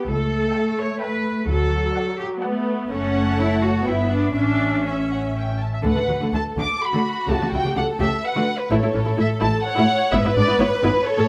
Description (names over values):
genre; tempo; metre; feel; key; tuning
quick classical-period movement for string orchestra; 126 BPM; 3/4; rubato; D major; A4 = 440 Hz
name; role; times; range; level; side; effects
muted studio viola section; accompaniment; 0.0-11.2 s; E3 to A4; -26 LUFS; equal; none
muted studio cello section; bass; 0.0-11.2 s; G#2 to C#5; -28 LUFS; equal; none
muted studio double bass section; bass; 0.1-10.9 s; F#1 to D2; -27 LUFS; equal; none
muted studio violin section; melody; 0.5-11.3 s; B4 to D6; -28 LUFS; equal; none
muted studio violin section; second line; 0.5-11.3 s; F#4 to G5; -29 LUFS; equal; none
room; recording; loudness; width
moderate recital hall reverb, RT60 1.3 s; close, detailed microphones; -21 LUFS; mono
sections
0.0-5.8 A section; 5.8-11.3 B section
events
none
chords
0.1 A7/C#; 1.5 D; 2.9 F#m; 3.9 Em/G; 4.4 A; 5.8 D; 7.3 A7/C#; 8.2 D; 8.7 A; 10.1 E7/G#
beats
| 0.08 0.55 1.01 | 1.48 1.95 2.43 | 2.90 3.37 3.86 | 4.35 4.85 5.34 | 5.83 6.32 6.81 | 7.28 7.76 8.24 | 8.71 9.18 9.65 | 10.12 10.59 11.06